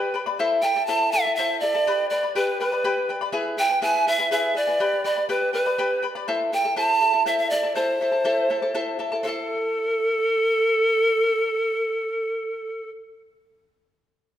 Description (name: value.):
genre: andean folk, Andean ensemble.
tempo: 81 BPM (dotted quarters).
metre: 6/8.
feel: straight.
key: A minor.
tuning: A4 = 445 Hz.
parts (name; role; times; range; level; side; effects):
breathy bright pan flute; melody; 0.0-12.9 s; A4 to A5; -21 LUFS; right 1 dB; none.
charango; accompaniment; 0.0-13.0 s; E4 to B5; -26 LUFS; left 2 dB; none.
room: wet recital hall reverb, RT60 1.6 s.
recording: none.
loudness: -20 LUFS.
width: side -11 dB against mid.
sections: 0.0-9.2 A section; 9.2-12.2 B section.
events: none.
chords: 0.4 Am; 1.9 G; 3.3 E; 4.8 G; 6.3 Am.